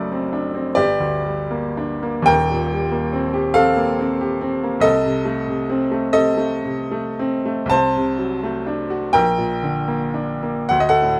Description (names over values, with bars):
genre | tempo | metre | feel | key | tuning
classical, romantic nocturne for solo piano | 34-49 BPM (dotted quarters) | 6/8 | rubato | G minor | A4 = 444 Hz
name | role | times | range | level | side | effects
bright upright piano | solo | 0.0-11.2 s | Eb1 to A5 | -20 LUFS | equal | none
room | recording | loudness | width
light reverb | close, detailed microphones | -20 LUFS | mono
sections
0.0-11.2 A section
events
none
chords
0.0 D7/F#; 0.8 Gm; 2.3 Eb6; 4.9 Adim/C; 7.7 D7/C; 9.2 Gm/Bb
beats
0.77 | 2.29 3.58 | 4.86 6.16 | 7.72 9.16 | 10.72